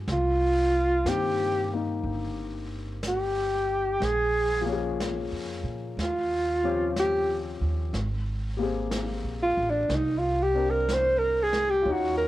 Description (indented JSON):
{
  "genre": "jazz ballad",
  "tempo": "61 BPM",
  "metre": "4/4",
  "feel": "swing 67% on 8ths",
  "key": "C minor",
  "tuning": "A4 = 440 Hz",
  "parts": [
    { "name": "warm baby grand piano", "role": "accompaniment", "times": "0.0-12.3 s", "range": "Eb3 to Bb4", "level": "-33 LUFS", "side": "left 6 dB", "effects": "cassette tape" },
    { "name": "upright bass", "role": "bass", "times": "0.0-12.3 s", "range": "G1 to Bb2", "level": "-31 LUFS", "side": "right 1 dB", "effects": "none" },
    { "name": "breathy alto saxophone", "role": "melody", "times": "0.1-12.3 s", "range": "D4 to C5", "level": "-24 LUFS", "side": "right 1 dB", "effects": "cassette tape" },
    { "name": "jazz brush drum kit", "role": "drums", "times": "0.1-12.3 s", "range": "brushed snare drum, hi-hat, snare drum", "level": "-38 LUFS", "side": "equal", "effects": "cassette tape" }
  ],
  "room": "studio ambience",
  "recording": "home recording on cassette",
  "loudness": "-24 LUFS",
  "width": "side -15 dB against mid",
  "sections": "0.1-12.3 A section",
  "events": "alto saxophone solo 0.1-12.3",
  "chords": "0.1 Cm7; 4.0 Bbm7; 6.0 Eb13; 7.9 Abmaj9"
}